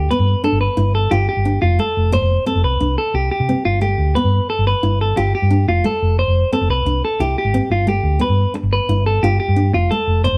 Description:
highlife; 118 BPM (dotted quarters); 12/8; straight; G mixolydian; A4 = 440 Hz
nylon-string guitar; accompaniment; 0.0-10.4 s; B2 to F4; -25 LUFS; equal
clean electric guitar; arpeggios; 0.0-10.4 s; F4 to C5; -22 LUFS; equal
hollow-body short-scale fingered electric bass; bass; 0.0-10.4 s; F1 to C3; -19 LUFS; equal
light reverb; band playing live in one room; -17 LUFS; mono
0.0-10.4 A section
0.0 G7; 1.6 F; 2.6 C5; 3.6 G7; 5.7 F; 6.7 C6; 7.7 G7; 9.7 F
0.11 0.61 1.12 | 1.62 2.13 2.64 3.14 | 3.65 4.16 4.66 5.17 | 5.68 6.19 6.69 7.20 | 7.71 8.22 8.72 9.23 | 9.74 10.25

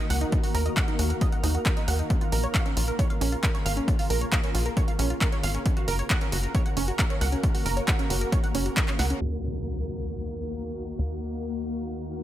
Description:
uplifting trance; 135 BPM; 4/4; straight; Eb minor; A4 = 440 Hz
shimmering ambient pad; sustained chords; 0.0-12.2 s; Db3 to Bb4; -33 LUFS; left 1 dB; chorus, built-in reverb, sidechain pumping
tight sequenced synth; arpeggios; 0.0-9.2 s; Db4 to Gb5; -32 LUFS; right 4 dB; chorus, sidechain pumping, dub echo
tight sequencer bass; bass; 0.1-12.2 s; Gb1 to Eb2; -28 LUFS; equal; sidechain pumping
punchy analog drum machine; drums; 0.1-9.2 s; handclaps, hi-hat, snare drum; -31 LUFS; equal; overdrive, sidechain pumping on hats, sidechain pumping on cymbals
electronic kick drum; drums; 0.3-8.9 s; -26 LUFS; equal; overdrive
impact; sound effects; 9.2-11.0 s; -35 LUFS; equal
digital ambience; low-pass filter; -24 LUFS; side -12 dB against mid
0.0-9.2 A section; 9.2-12.2 B section
filter sweep on ambient pad 0.0-9.2; drum fill 9.0; impact 9.2-11.0; filter sweep 9.2-12.2
0.0 Ebm; 2.1 Bbm; 5.7 Gb; 9.2 Ebm
| 0.32 0.77 1.21 1.66 | 2.10 2.55 2.99 3.44 | 3.88 4.32 4.77 5.21 | 5.66 6.10 6.55 6.99 | 7.43 7.88 8.32 8.77 | 9.21 9.66 10.10 10.55 | 10.99 11.44 11.88

